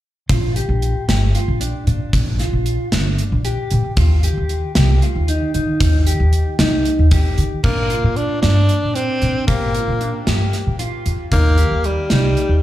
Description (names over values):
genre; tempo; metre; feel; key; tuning
progressive instrumental, band music in an uneven meter; 229 BPM (eighths); 7/8; straight; Bb major; A4 = 440 Hz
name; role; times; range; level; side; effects
mellow electric guitar; arpeggios; 0.3-12.6 s; D4 to G4; -24 LUFS; equal; lush chorus, slapback echo, ping-pong delay
upright bass; bass; 0.3-12.6 s; G1 to Eb3; -17 LUFS; equal; none
gated 80s drum kit; drums; 0.3-12.5 s; crash cymbal, hi-hat, kick drum, snare drum; -20 LUFS; equal; none
clear tenor saxophone; melody; 7.6-12.6 s; G3 to D4; -20 LUFS; left 1 dB; slapback echo, ping-pong delay
room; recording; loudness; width
small room ambience; live gig heard through the venue's PA, club reverb; -15 LUFS; side -14 dB against mid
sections
0.3-7.6 A section; 7.6-12.6 B section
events
none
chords
0.3 Bb6; 4.0 Ebadd9; 7.6 Bb6; 11.3 Eb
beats
| 0.30 0.56 0.82 1.08 1.35 1.61 1.87 | 2.13 2.40 2.66 2.92 3.18 3.45 3.71 | 3.97 4.23 4.50 4.76 5.02 5.28 5.54 | 5.81 6.07 6.33 6.59 6.86 7.12 7.38 | 7.64 7.91 8.17 8.43 8.69 8.96 9.22 | 9.48 9.74 10.01 10.27 10.53 10.79 11.05 | 11.32 11.58 11.84 12.11 12.37